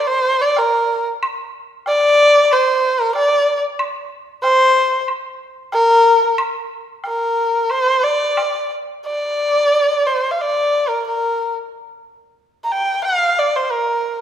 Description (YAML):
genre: chinese traditional, Chinese chamber ensemble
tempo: 91 BPM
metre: 4/4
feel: straight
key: D jue mode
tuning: A4 = 440 Hz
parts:
  - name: dark erhu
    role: melody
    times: 0.0-14.2 s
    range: Bb4 to Bb5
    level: -14 LUFS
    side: equal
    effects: none
  - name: woodblock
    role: percussion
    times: 0.6-8.5 s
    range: none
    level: -27 LUFS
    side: equal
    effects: none
room: moderate scoring stage reverb, RT60 1.7 s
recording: none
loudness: -14 LUFS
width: side -10 dB against mid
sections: 0.0-9.1 A section; 9.1-14.2 B section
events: none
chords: none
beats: 0.56 | 1.21 1.86 2.51 3.15 | 3.79 4.44 5.08 5.73 | 6.39 7.05 7.71 8.38 | 9.06 9.73 10.40 11.06 | 11.73 12.39 13.05 13.71